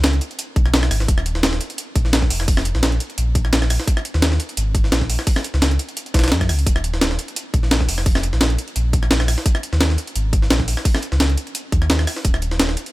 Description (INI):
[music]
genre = liquid drum and bass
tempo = 172 BPM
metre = 4/4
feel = swing 53% on 16ths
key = Eb minor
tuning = A4 = 437 Hz
[part]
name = sub bass with octave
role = bass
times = 0.0-12.8 s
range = Eb1 to Gb2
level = -19 LUFS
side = equal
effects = none
[part]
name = breakbeat sampler-style drum kit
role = drums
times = 0.0-12.9 s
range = hi-hat, rim click, snare drum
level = -22 LUFS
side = equal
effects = none
[part]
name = jungle sampler-style drum kit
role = drums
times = 0.0-12.9 s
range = hi-hat, snare drum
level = -26 LUFS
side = equal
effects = overdrive, high-pass filter on hats, high-pass filter on snare
[part]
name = electronic kick drum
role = drums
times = 0.6-12.3 s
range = none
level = -18 LUFS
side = equal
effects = none
[sound]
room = little or no reverb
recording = none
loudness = -16 LUFS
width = side -18 dB against mid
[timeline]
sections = 0.0-12.9 A section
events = none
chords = none